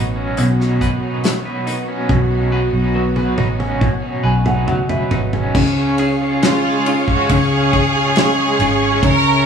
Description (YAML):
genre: pop ballad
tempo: 69 BPM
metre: 4/4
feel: straight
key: unclear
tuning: A4 = 440 Hz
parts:
  - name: dark upright piano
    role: accompaniment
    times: 0.0-9.5 s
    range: F#3 to G#5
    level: -22 LUFS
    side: right 1 dB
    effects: none
  - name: warm studio string section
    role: sustained chords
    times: 0.0-9.5 s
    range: D#3 to C#6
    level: -23 LUFS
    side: right 2 dB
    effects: none
  - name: electric guitar at the edge of break-up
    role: arpeggios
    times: 0.0-9.5 s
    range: B2 to B4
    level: -22 LUFS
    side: equal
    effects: tremolo
  - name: vintage muted fingered electric bass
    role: bass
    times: 0.0-9.5 s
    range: G#1 to C#2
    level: -20 LUFS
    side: left 1 dB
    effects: none
  - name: loose indie drum kit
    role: drums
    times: 0.4-9.2 s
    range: crash cymbal, hi-hat, kick drum, ride cymbal, snare drum, toms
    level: -21 LUFS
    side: left 1 dB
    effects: none
  - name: bright studio violin section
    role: melody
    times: 6.4-9.5 s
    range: E#4 to A#4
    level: -18 LUFS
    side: right 1 dB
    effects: tape echo
room: moderate studio reverb, RT60 0.8 s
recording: band playing live in one room, small room reverb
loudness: -14 LUFS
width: side -7 dB against mid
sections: 0.0-5.5 A section; 5.5-9.5 B section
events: drum fill 2.1-5.5; upright piano fill 3.8-5.5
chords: 0.0 Badd9; 5.5 C#